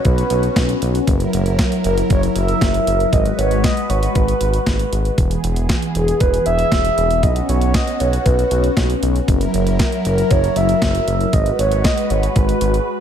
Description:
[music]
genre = synth-pop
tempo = 117 BPM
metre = 4/4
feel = straight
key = B major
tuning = A4 = 440 Hz
[part]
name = mellow horn-like synth lead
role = melody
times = 0.0-13.0 s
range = G#4 to E5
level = -21 LUFS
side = right 1 dB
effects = chorus, ping-pong delay
[part]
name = phased analog pad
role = sustained chords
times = 0.0-13.0 s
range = E3 to B4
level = -21 LUFS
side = equal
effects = phaser, chorus
[part]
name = clean 12-bit digital drum machine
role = drums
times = 0.0-12.9 s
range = hi-hat, kick drum, snare drum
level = -19 LUFS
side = equal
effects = none
[part]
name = smooth synth bass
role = bass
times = 0.1-12.8 s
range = E1 to B1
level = -19 LUFS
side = equal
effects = none
[sound]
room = moderate plate reverb, RT60 1.4 s, digital ambience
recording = dreamy mix soaked in reverb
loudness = -14 LUFS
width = side -9 dB against mid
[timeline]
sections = 0.0-13.0 A section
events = none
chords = 0.0 Bsus2; 1.1 F#7; 3.1 G#m7; 5.2 E; 7.2 Bsus2; 9.3 F#7; 11.3 G#m7

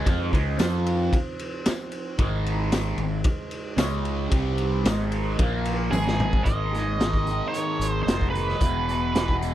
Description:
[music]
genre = psychedelic rock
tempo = 112 BPM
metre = 4/4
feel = straight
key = unclear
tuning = A4 = 442 Hz
[part]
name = mellow tonewheel organ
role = sustained chords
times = 0.0-9.5 s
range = F3 to F5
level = -36 LUFS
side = right 5 dB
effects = slow rotary speaker
[part]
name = fuzz guitar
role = riff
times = 0.0-9.5 s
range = E2 to F4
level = -27 LUFS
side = equal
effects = distortion, phaser
[part]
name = fingered electric bass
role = bass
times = 0.1-9.5 s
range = E1 to F2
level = -28 LUFS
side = equal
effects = none
[part]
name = raw garage drum kit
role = drums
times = 0.1-9.5 s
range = hi-hat, kick drum, ride cymbal, snare drum, toms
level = -26 LUFS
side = equal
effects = none
[part]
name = tambourine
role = percussion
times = 0.6-6.1 s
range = none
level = -42 LUFS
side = left 18 dB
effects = none
[part]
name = octave-fuzz lead guitar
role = melody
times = 5.9-9.4 s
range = Ab4 to Eb5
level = -28 LUFS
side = right 3 dB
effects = distortion, tape echo
[sound]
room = little or no reverb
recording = none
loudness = -22 LUFS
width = side -12 dB against mid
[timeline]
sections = 0.0-6.5 A section; 6.5-9.5 B section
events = drum fill 5.9-6.5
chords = 0.1 Ab; 0.6 F5; 2.2 Ab; 3.8 Db5; 4.3 C5; 4.9 Ab; 5.4 Bb5; 5.9 Ab; 6.5 Absus2; 8.6 Eadd9

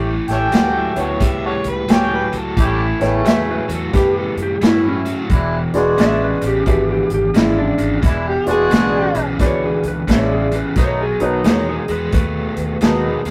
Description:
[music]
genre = electric blues shuffle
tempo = 88 BPM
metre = 4/4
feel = swing 64% on 8ths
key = E mixolydian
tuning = A4 = 440 Hz
[part]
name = overdriven electric guitar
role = riff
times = 0.0-13.3 s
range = E2 to A3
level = -24 LUFS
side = equal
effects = tremolo
[part]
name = warm horn section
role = stabs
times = 0.0-13.3 s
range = C#3 to G5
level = -23 LUFS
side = equal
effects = none
[part]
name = vintage muted fingered electric bass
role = bass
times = 0.0-13.3 s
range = E1 to G2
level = -27 LUFS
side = equal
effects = none
[part]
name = overdriven harmonica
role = second line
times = 0.3-3.1, 8.1-9.3 s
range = E4 to F#5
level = -25 LUFS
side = equal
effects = none
[part]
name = swinging big-band drum kit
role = drums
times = 0.3-13.3 s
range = hi-hat, kick drum, snare drum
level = -20 LUFS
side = equal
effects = none
[part]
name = warm grand piano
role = accompaniment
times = 1.0-13.2 s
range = B3 to A5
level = -25 LUFS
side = equal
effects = none
[part]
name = electric slide guitar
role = melody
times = 3.3-12.8 s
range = C#4 to E5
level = -23 LUFS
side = equal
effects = none
[sound]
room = moderate booth ambience, RT60 0.2 s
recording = rough rehearsal-room recording, tube saturation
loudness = -17 LUFS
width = mono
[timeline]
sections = 0.0-13.3 A section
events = none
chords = 0.0 A7; 5.3 E7; 10.8 B7

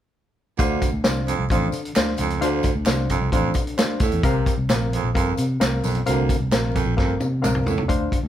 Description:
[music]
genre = uptempo 1960s-style soul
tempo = 132 BPM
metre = 4/4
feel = straight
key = D minor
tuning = A4 = 440 Hz
[part]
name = barky reed electric piano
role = accompaniment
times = 0.6-8.3 s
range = C3 to F5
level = -26 LUFS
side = left 3 dB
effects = overdrive, fast tremolo
[part]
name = clear baritone saxophone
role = riff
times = 0.6-7.8 s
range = D2 to C3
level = -26 LUFS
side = right 6 dB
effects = none
[part]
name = vintage muted picked electric bass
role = bass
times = 0.6-8.3 s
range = G1 to D3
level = -24 LUFS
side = equal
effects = none
[part]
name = vintage drum kit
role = drums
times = 0.6-8.2 s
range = hi-hat, kick drum, snare drum, toms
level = -23 LUFS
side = equal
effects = none
[part]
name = tambourine and handclaps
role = percussion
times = 0.6-7.8 s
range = none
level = -34 LUFS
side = equal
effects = none
[sound]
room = light reverb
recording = band playing live in one room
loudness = -19 LUFS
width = side -11 dB against mid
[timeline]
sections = 0.6-7.9 A section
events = drum fill 7.0-7.9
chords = 0.6 Dm7; 4.2 C7sus4

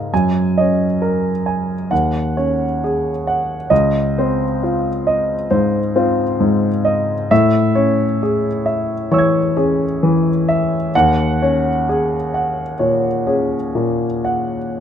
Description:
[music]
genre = classical, impressionist solo piano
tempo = 66 BPM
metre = 4/4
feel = rubato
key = unclear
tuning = A4 = 437 Hz
[part]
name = clear grand piano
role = solo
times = 0.0-14.8 s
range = Db2 to Bb6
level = -15 LUFS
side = equal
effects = none
[sound]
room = light reverb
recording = close, detailed microphones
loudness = -15 LUFS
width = side -8 dB against mid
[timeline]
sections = 0.0-14.8 A section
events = none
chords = 0.1 Gb69; 1.9 Ebm7; 3.7 Dbmaj9; 7.3 Amaj7; 10.9 Ebm7

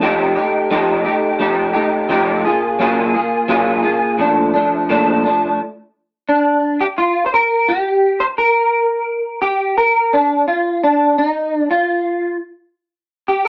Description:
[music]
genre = indie pop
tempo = 86 BPM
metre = 4/4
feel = straight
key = Bb major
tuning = A4 = 438 Hz
[part]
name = electric guitar through a small old amp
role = solo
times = 0.0-13.5 s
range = Bb2 to C5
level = -16 LUFS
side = equal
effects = ensemble chorus, warbly pitch drift
[sound]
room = wet studio reverb, RT60 0.6 s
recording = dark, warm production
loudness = -16 LUFS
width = mono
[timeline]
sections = 0.0-5.6 A section; 5.6-13.5 B section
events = clean electric guitar solo 5.6-13.5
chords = 0.0 F9; 2.5 Gbmaj9; 4.2 Bbmaj7; 5.6 N.C.

